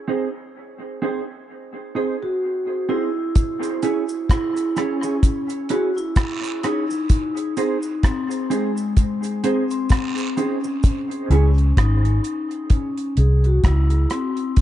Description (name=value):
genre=dub reggae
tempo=64 BPM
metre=4/4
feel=swing 58% on 16ths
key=C# harmonic minor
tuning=A4 = 440 Hz
part: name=mellow electric guitar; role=accompaniment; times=0.1-11.5 s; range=B#3 to C#5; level=-26 LUFS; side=right 4 dB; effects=ensemble chorus, low-pass filter, dub echo
part: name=vibraphone with soft mallets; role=melody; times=2.0-14.6 s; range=G#3 to G#4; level=-24 LUFS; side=left 1 dB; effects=dub echo
part: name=deep reggae drum kit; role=drums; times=3.4-14.6 s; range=hi-hat, kick drum, rim click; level=-19 LUFS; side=equal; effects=none
part: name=cabasa and guiro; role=percussion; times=3.4-11.1 s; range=none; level=-38 LUFS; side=right 5 dB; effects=dub echo
part: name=vintage muted fingered electric bass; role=bass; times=11.3-14.1 s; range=G#1 to C#2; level=-15 LUFS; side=equal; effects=none
room=light reverb, small room ambience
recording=echo-heavy mix, nothing above 10.9 kHz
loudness=-18 LUFS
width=side -12 dB against mid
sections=0.0-3.4 A section; 3.4-14.6 B section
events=break 0.0-3.4; part muted 10.8-14.6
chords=0.0 G#; 3.4 C#m; 7.1 G#; 10.8 C#5